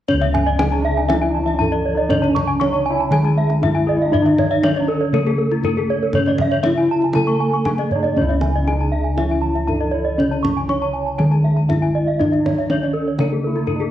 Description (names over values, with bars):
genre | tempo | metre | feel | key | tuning
Balinese gamelan | 119 BPM | 4/4 | straight | C# pelog | A4 = 445 Hz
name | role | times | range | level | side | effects
gamelan-type bronze metallophone | melody | 0.1-13.9 s | A3 to C#5 | -23 LUFS | right 1 dB | none
gamelan-type bronze metallophone | accompaniment | 0.1-13.9 s | C#3 to A3 | -27 LUFS | left 1 dB | none
gamelan-type bronze metallophone | arpeggios | 0.1-13.9 s | E4 to C#6 | -24 LUFS | left 5 dB | none
gamelan-type bossed gongs | bass | 0.1-13.9 s | C#2 to D4+35c | -20 LUFS | equal | none
kendang | percussion | 0.1-13.8 s | none | -26 LUFS | right 1 dB | none
gamelan-type bronze metallophone | arpeggios | 0.3-13.6 s | A4 to C#6 | -24 LUFS | right 4 dB | none
bright tine electric piano | second line | 0.7-13.9 s | C#4 to G#4 | -27 LUFS | equal | slow stereo tremolo
room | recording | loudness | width
moderate recital hall reverb, RT60 1.2 s | worn, warbling old tape, cassette tape, warbly pitch drift | -16 LUFS | side -12 dB against mid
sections
0.1-13.9 A section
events
none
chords
none